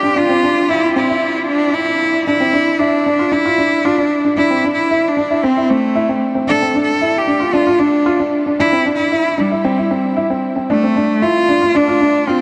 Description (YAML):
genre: electronica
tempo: 114 BPM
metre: 4/4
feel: straight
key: D minor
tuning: A4 = 440 Hz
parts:
  - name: clear cello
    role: melody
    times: 0.0-12.4 s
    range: G3 to A4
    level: -17 LUFS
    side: equal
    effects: shimmer reverb
  - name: warm upright piano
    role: riff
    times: 0.0-12.4 s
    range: C4 to F4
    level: -19 LUFS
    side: equal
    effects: shimmer reverb, delay
room: wet huge ambient reverb, RT60 8.3 s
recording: dark, warm production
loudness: -15 LUFS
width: mono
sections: 0.0-2.3 A section; 2.3-12.4 B section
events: build-up 0.0-2.3; break 1.2-2.3; drop 2.3-12.4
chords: 0.2 C; 2.3 Dm; 4.4 Amadd11; 6.5 Dm; 8.6 C; 10.7 Dm